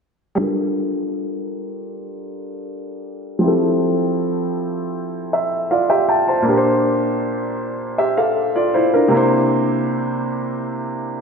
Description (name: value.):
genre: R&B.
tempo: 79 BPM.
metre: 4/4.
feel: straight.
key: G dorian.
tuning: A4 = 441 Hz.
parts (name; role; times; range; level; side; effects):
warm grand piano; accompaniment; 0.4-11.2 s; Bb2 to A5; -17 LUFS; equal; low-pass filter.
room: wet plate reverb, RT60 2.6 s.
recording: dreamy mix soaked in reverb.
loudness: -17 LUFS.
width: side -5 dB against mid.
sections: 0.4-11.2 A section.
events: filter sweep on grand piano 0.4-11.2; grand piano fill 4.9-6.5, 11.0.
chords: 0.4 Gm7; 3.4 Fmaj9; 6.5 Bb6; 9.1 C7.